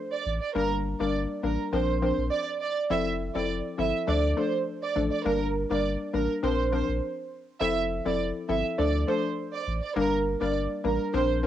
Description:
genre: dancehall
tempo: 102 BPM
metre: 4/4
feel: straight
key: unclear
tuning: A4 = 440 Hz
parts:
  - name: warm studio violin section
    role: melody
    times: 0.1-11.5 s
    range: Bb4 to E5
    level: -29 LUFS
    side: right 6 dB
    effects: cassette tape, plate reverb
  - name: warm sub bass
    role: bass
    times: 0.3-11.5 s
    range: F1 to D2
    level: -31 LUFS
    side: equal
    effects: none
  - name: hollow square pluck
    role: accompaniment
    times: 0.5-11.5 s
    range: F3 to Bb4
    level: -28 LUFS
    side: left 5 dB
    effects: chorus, plate reverb
room: wet booth ambience, RT60 0.2 s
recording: home recording on cassette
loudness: -25 LUFS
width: side -11 dB against mid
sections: 0.0-2.9 A section; 2.9-11.5 B section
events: none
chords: 0.0 D5; 0.6 Gm; 1.7 Bbadd9; 2.9 Fmaj7; 4.1 Dm; 5.3 Gm; 6.4 Bbadd9; 7.6 Fmaj7; 8.8 Dm; 10.0 Gm

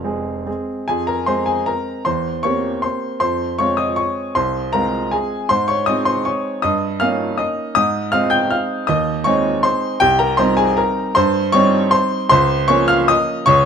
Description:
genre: classical, piano waltz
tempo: 157 BPM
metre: 3/4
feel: uneven beats, rubato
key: F minor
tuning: A4 = 440 Hz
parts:
  - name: clear upright piano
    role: solo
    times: 0.0-13.7 s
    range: F1 to G6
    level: -15 LUFS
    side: equal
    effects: none
room: light reverb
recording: close, detailed microphones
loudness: -15 LUFS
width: side -7 dB against mid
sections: 0.9-13.7 A section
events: none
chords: 0.0 Fm; 2.1 C7/E; 3.2 Fm; 5.5 Ab; 6.6 Eb7/G; 7.8 Ab; 10.0 Cm; 12.3 Bbm/Db

